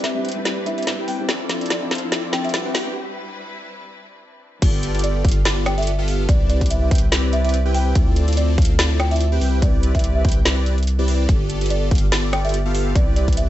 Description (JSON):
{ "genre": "future bass", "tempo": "144 BPM", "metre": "4/4", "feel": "swing 56% on 16ths, half-time", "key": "C major", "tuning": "A4 = 440 Hz", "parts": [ { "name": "folk marimba with soft mallets", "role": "melody", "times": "0.0-2.5, 5.0-13.4 s", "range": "D5 to G5", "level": "-28 LUFS", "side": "right 2 dB", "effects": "vintage 12-bit sampler grit, sidechain pumping, dub echo" }, { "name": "felt-muted upright piano", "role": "accompaniment", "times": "0.0-3.0 s", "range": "F3 to B4", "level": "-29 LUFS", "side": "right 2 dB", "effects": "sidechain pumping, tape echo" }, { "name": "rich symphonic string section", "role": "sustained chords", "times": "0.0-4.6 s", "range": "F3 to B4", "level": "-34 LUFS", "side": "left 2 dB", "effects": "sidechain pumping" }, { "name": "big bright polysynth", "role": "riff", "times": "0.0-13.5 s", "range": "B3 to G5", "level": "-25 LUFS", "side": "left 2 dB", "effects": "chorus, sidechain pumping" }, { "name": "trap drum kit", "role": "drums", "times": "0.0-13.5 s", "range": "crash cymbal, hi-hat, rim click, snare drum", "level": "-24 LUFS", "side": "equal", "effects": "none" }, { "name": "riser", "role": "sound effects", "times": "0.1-3.0 s", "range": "none", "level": "-36 LUFS", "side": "right 1 dB", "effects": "none" }, { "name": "saturated sub bass", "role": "bass", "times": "4.6-13.5 s", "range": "G1 to D2", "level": "-20 LUFS", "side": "equal", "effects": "sidechain pumping" }, { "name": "electronic kick drum", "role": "drums", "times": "4.6-13.4 s", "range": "none", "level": "-18 LUFS", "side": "equal", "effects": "none" } ], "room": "little or no reverb", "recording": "high-pass filter, nothing above 8.0 kHz", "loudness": "-17 LUFS", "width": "side -14 dB against mid", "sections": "0.0-4.6 A section; 4.6-13.5 B section", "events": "build-up 0.0-4.6; drum fill 0.0-3.0; filter sweep on analog polysynth 0.0-4.6; break 3.0-4.6; drop 4.6-13.5", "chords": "0.0 Cmaj9; 1.3 Dm9; 2.7 Cmaj9; 4.6 G9; 6.3 Cmaj9; 8.0 Dm9; 9.4 Cmaj9; 11.3 G9; 13.0 Cmaj9", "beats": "0.04 0.46 0.87 | 1.29 1.71 2.12 2.54 | 2.96 3.37 3.79 4.21 | 4.62 5.04 5.46 5.87 | 6.29 6.71 7.12 7.54 | 7.96 8.37 8.79 9.21 | 9.62 10.04 10.46 10.87 | 11.29 11.71 12.12 12.54 | 12.96 13.37" }